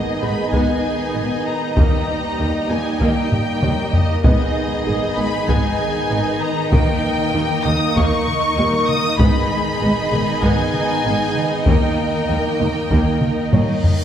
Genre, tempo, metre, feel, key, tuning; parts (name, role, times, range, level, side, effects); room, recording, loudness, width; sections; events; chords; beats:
cinematic, hybrid orchestral and electronic film score; 97 BPM; 4/4; straight; G# harmonic minor; A4 = 440 Hz
warm symphonic violin section; melody; 0.0-13.8 s; D#5 to D#6; -24 LUFS; left 2 dB
rich symphonic violin section; second line; 0.0-13.9 s; G4 to D#5; -27 LUFS; equal
rich symphonic viola section; accompaniment; 0.0-13.9 s; A#3 to D#4; -26 LUFS; equal
granular cloud pad; sustained chords; 0.0-14.0 s; D#3 to D#5; -26 LUFS; right 2 dB; built-in reverb
warm French horn section; sustained chords; 0.0-13.8 s; A#3 to D#4; -28 LUFS; left 1 dB
warm trombone section; sustained chords; 0.0-13.8 s; D#3 to B3; -28 LUFS; right 3 dB
tight sequenced synth; arpeggios; 0.0-13.7 s; D#3 to G#4; -29 LUFS; left 1 dB
felt-muted upright piano; texture; 0.0-14.0 s; G3 to C#5; -35 LUFS; left 3 dB
rich studio cello section; bass; 0.2-13.6 s; D#2 to G#2; -26 LUFS; right 1 dB
rich studio double bass section; bass; 0.2-13.6 s; G#1 to D#2; -27 LUFS; right 2 dB
solo taiko drums; drums; 0.5-14.0 s; -19 LUFS; equal
reverse cymbal; sound effects; 13.5-14.0 s; -34 LUFS; equal
wet recital hall reverb, RT60 1.7 s; recorded in a church or concert hall; -16 LUFS; side -9 dB against mid
0.0-14.0 A section
drum fill 3.3-4.2, 13.2-14.0; reverse cymbal 13.5-14.0
0.0 G#m; 1.8 D#; 4.2 G#m; 6.7 D#; 9.2 G#m; 11.7 D#
0.54 1.16 | 1.78 2.40 3.01 3.63 | 4.25 4.87 5.49 6.11 | 6.72 7.34 7.96 8.58 | 9.20 9.82 10.44 11.05 | 11.67 12.29 12.91 13.53